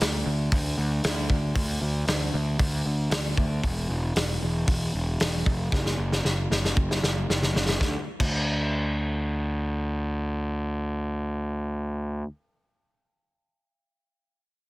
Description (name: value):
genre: rock, shoegaze and dream pop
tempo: 115 BPM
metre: 4/4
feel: straight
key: D major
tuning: A4 = 439 Hz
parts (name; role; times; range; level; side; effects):
- fuzz picked electric bass; bass; 0.0-12.2 s; E1 to D2; -26 LUFS; equal; overdrive
- loose indie drum kit; drums; 0.0-8.3 s; crash cymbal, hi-hat, kick drum, snare drum; -26 LUFS; equal; none
room: little or no reverb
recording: dense, heavily limited modern master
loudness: -24 LUFS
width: side -20 dB against mid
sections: 0.0-7.8 A section; 7.8-12.0 B section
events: drum fill 5.7-7.8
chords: none